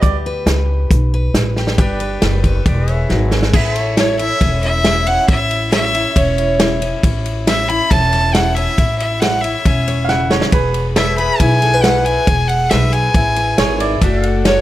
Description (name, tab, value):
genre	honky-tonk and classic country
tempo	137 BPM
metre	4/4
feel	straight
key	A major from 3.5 s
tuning	A4 = 441 Hz
part	bright upright piano	second line	0.0-0.1, 10.0-10.8, 13.6-14.2 s	B4 to F#5	-22 LUFS	right 5 dB	none
part	picked steel-string acoustic guitar	accompaniment	0.0-14.6 s	A2 to C#5	-22 LUFS	left 3 dB	none
part	pedal steel guitar	sustained chords	0.0-14.6 s	G4 to F#5	-25 LUFS	left 1 dB	none
part	upright bass	bass	0.0-14.6 s	E1 to D2	-18 LUFS	equal	none
part	natural country drum kit	drums	0.0-14.6 s	crash cymbal, hi-hat, kick drum, ride cymbal, snare drum	-17 LUFS	equal	none
part	clear fiddle	melody	4.0-14.6 s	C#5 to B5	-17 LUFS	equal	none
room	light reverb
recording	none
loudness	-13 LUFS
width	side -14 dB against mid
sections	0.0-1.8 A section; 1.8-3.5 B section; 3.5-14.6 C section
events	upright piano solo 0.0-1.8; drum fill 1.6, 3.1-3.5, 10.1-10.5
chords	0.0 G; 2.7 E; 3.5 A; 10.5 E; 14.0 D/F#